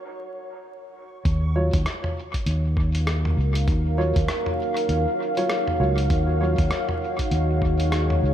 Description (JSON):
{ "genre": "ambient dub", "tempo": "99 BPM", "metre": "4/4", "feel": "swing 59% on 16ths", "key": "Eb minor", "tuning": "A4 = 440 Hz", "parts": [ { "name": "deep dark ambient pad", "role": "sustained chords", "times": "3.0-8.3 s", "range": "Eb4 to Gb5", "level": "-27 LUFS", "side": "equal", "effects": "chorus, built-in reverb" }, { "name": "fingered electric bass", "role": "bass", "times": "1.3-8.3 s", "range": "Db2 to Eb2", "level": "-22 LUFS", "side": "equal", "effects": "none" }, { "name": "electronic kick drum", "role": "drums", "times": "1.3-7.8 s", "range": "none", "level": "-25 LUFS", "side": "equal", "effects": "none" }, { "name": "lo-fi sampler-style drum kit", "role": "drums", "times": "1.3-8.2 s", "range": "hi-hat, rim click, toms", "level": "-30 LUFS", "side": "equal", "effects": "dub echo" }, { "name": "dark upright piano", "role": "stabs", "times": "1.6-6.5 s", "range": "Gb3 to Db5", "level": "-31 LUFS", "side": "right 1 dB", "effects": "dub echo" } ], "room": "light reverb, digital ambience", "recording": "vinyl crackle", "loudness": "-20 LUFS", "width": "side -10 dB against mid", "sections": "0.0-1.3 A section; 1.3-8.3 B section", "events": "break 0.0-1.3", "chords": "0.0 N.C.; 1.3 Ebm9", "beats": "0.04 0.65 | 1.25 1.86 2.46 3.07 | 3.68 4.28 4.89 5.50 | 6.10 6.71 7.31 7.92" }